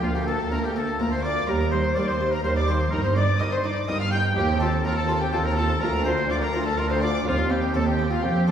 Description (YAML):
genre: classical, baroque-style concerto movement with solo episodes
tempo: 124 BPM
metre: 3/4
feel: straight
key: Bb major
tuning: A4 = 440 Hz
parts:
  - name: clear trumpet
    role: melody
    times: 0.0-8.5 s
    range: F4 to G5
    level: -29 LUFS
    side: left 1 dB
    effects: none
  - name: warm chamber violin section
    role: melody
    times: 0.0-8.5 s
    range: F5 to G6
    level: -31 LUFS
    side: left 1 dB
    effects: none
  - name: rich chamber violin section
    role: second line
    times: 0.0-8.5 s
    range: F4 to G5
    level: -30 LUFS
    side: left 1 dB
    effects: none
  - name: harpsichord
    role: accompaniment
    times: 0.0-8.5 s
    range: D2 to Eb5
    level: -33 LUFS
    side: equal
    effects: none
  - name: warm chamber viola section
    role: accompaniment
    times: 0.0-8.5 s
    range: G3 to F4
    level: -31 LUFS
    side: right 1 dB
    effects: none
  - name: dark chamber cello section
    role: bass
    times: 0.0-8.5 s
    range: D2 to G2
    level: -28 LUFS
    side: right 2 dB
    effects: none
  - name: rich chamber double bass section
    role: bass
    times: 0.0-8.5 s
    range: F1 to Eb2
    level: -27 LUFS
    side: right 1 dB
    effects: none
room: wet recital hall reverb, RT60 1.5 s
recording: heard from further back in the room, small room ambience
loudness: -21 LUFS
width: side -8 dB against mid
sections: 0.0-8.5 A section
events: none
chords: 0.0 Bb/D; 1.5 Eb; 2.9 Eb/G; 4.4 F5/Eb; 5.8 Bbmaj9/D; 7.3 Cm/Eb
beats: | 0.02 0.51 0.99 | 1.48 1.96 2.44 | 2.92 3.40 3.88 | 4.36 4.84 5.33 | 5.81 6.29 6.78 | 7.26 7.75 8.23